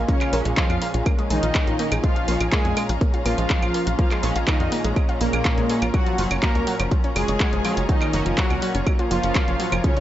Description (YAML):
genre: melodic techno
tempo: 123 BPM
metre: 4/4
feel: straight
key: Bb minor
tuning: A4 = 441 Hz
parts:
  - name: warm studio string section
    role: sustained chords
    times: 0.0-10.0 s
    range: Db4 to Bb5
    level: -34 LUFS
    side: left 4 dB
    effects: sidechain pumping
  - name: sync-sweep polysynth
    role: stabs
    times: 0.0-10.0 s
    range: Bb2 to Db4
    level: -31 LUFS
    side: right 3 dB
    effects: ensemble chorus, sidechain pumping, analog delay
  - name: tight sequencer bass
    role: bass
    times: 0.0-9.8 s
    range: Gb1 to F2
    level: -25 LUFS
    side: equal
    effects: sidechain pumping
  - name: analog drone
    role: drone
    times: 0.4-10.0 s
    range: Bb2 to F4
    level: -37 LUFS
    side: left 1 dB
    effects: none
  - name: soft supersaw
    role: melody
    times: 0.1-10.0 s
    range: Bb2 to Bb4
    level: -26 LUFS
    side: equal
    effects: sidechain pumping, tape echo
  - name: dark studio violin section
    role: second line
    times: 0.1-10.0 s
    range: Bb4 to Bb5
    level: -34 LUFS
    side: left 1 dB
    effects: sidechain pumping, analog delay
  - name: warbly dusty pluck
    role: arpeggios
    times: 0.1-10.0 s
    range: F3 to F5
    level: -29 LUFS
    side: equal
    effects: chorus, cassette tape, sidechain pumping, analog delay
  - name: electronic kick drum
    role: drums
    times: 0.1-9.9 s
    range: none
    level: -22 LUFS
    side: equal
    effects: none
  - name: house drum kit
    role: drums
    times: 0.1-10.0 s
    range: claves, handclaps, hi-hat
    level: -28 LUFS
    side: right 1 dB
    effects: sidechain pumping on hats, sidechain pumping on perc, sidechain pumping on toms
room: digital ambience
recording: dry, gritty hardware recording, nothing above 7.8 kHz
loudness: -19 LUFS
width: side -13 dB against mid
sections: 0.0-10.0 A section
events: none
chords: 0.0 Bbm7; 5.9 Gb